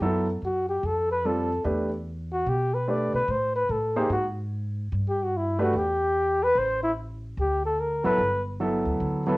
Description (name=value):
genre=jazz, small-group swing and bop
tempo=147 BPM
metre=4/4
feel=swing 64% on 8ths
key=G major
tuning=A4 = 440 Hz
part: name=warm concert grand piano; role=accompaniment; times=0.0-9.4 s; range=F#3 to C5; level=-26 LUFS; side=right 1 dB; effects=none
part: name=upright bass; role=bass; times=0.0-9.4 s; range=G1 to B2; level=-31 LUFS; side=equal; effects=none
part: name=mellow flugelhorn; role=melody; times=0.4-9.4 s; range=E4 to D5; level=-24 LUFS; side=left 1 dB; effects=none
room=wet small room reverb, RT60 0.6 s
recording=home recording on cassette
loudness=-24 LUFS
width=side -21 dB against mid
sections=0.0-9.4 A section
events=none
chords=0.0 F#madd11; 0.8 Fadd9; 1.6 Em7; 3.3 Am; 4.1 N.C.; 4.9 Gadd9; 5.7 Em; 6.6 Am; 7.4 D69; 8.2 Gmaj9